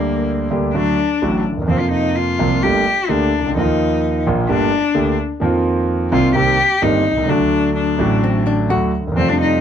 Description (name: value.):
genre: tango.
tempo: 128 BPM.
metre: 4/4.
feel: rubato.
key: unclear.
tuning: A4 = 441 Hz.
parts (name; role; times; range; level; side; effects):
warm cello; second line; 0.0-9.6 s; Bb3 to G4; -18 LUFS; left 4 dB; none.
warm concert grand piano; accompaniment; 0.0-9.6 s; G1 to G4; -16 LUFS; right 2 dB; none.
archtop guitar, miked and amplified; second line; 8.2-9.0 s; C4 to F#4; -22 LUFS; left 5 dB; none.
room: light reverb.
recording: close, detailed microphones.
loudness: -14 LUFS.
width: side -8 dB against mid.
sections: 0.0-9.6 A section.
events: cello solo 0.0-9.6.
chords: 0.0 Gm/D; 0.7 D; 1.7 Fsus4; 2.6 Gmadd9; 3.6 Ebsus2; 4.5 Gmadd9; 5.4 F7sus4; 6.4 Cm7; 7.3 D.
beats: 0.27 0.74 1.22 | 1.69 2.16 2.63 3.10 | 3.56 4.03 4.49 4.96 | 5.42 5.89 6.35 6.82 | 7.29 7.76 8.23 8.71 | 9.18.